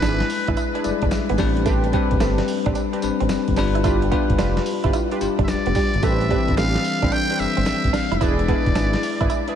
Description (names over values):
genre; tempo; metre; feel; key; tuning
R&B, new jack swing; 110 BPM; 4/4; swing 66% on 16ths; A minor; A4 = 442 Hz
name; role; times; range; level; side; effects
trumpet with metal mute; melody; 0.0-1.1, 5.4-9.6 s; B4 to G5; -26 LUFS; equal; ping-pong delay
bell-like tine electric piano; accompaniment; 0.0-9.6 s; E3 to A5; -23 LUFS; left 6 dB; wide subtle chorus
direct-recorded clean electric guitar; riff; 0.0-9.5 s; G3 to E4; -28 LUFS; right 8 dB; lush chorus
funky polysynth comp; stabs; 0.0-9.6 s; C4 to B4; -28 LUFS; right 3 dB; chorus, ping-pong delay
smooth synth bass; bass; 0.0-9.3 s; E1 to A1; -24 LUFS; equal; none
dusty soul sampler-style drum kit; drums; 0.0-9.6 s; hi-hat, kick drum, snare drum, tambourine; -24 LUFS; equal; none
room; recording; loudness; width
moderate huge ambient reverb, RT60 5.4 s; dreamy mix soaked in reverb; -18 LUFS; side -9 dB against mid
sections
0.0-9.6 A section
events
tine electric piano fill 0.6-1.7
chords
0.0 E7; 1.4 Am11; 3.6 G7; 6.0 Am11; 8.2 E7